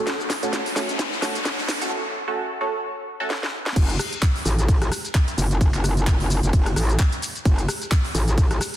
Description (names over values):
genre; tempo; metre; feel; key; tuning
bass house; 130 BPM; 4/4; swing 57% on 16ths; F# minor; A4 = 439 Hz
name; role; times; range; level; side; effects
band-passed chord stab; stabs; 0.0-3.3 s; A3 to A4; -27 LUFS; right 2 dB; phaser, analog chorus, sidechain pumping, dub echo
riser; sound effects; 0.0-1.9 s; none; -30 LUFS; left 1 dB; none
garage drum kit; drums; 0.1-8.8 s; crash cymbal, handclaps, hi-hat, ride cymbal, rim click, shaker, snare drum; -26 LUFS; equal; soft clipping on snare
metallic wobble bass; bass; 3.8-8.6 s; F#1 to A1; -21 LUFS; equal; chorus, tube saturation, sidechain pumping
electronic kick drum; drums; 3.8-8.5 s; none; -20 LUFS; equal; none
room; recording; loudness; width
light reverb; dense, heavily limited modern master, high-pass filter; -20 LUFS; side -12 dB against mid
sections
0.0-3.8 A section; 3.8-8.8 B section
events
build-up 0.0-3.8; drum fill 0.0-1.9, 3.3-3.8; riser 0.0-1.9; filter sweep on synth stab 0.0-3.8; break 1.9-3.8; drop 3.8-8.8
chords
0.0 F#m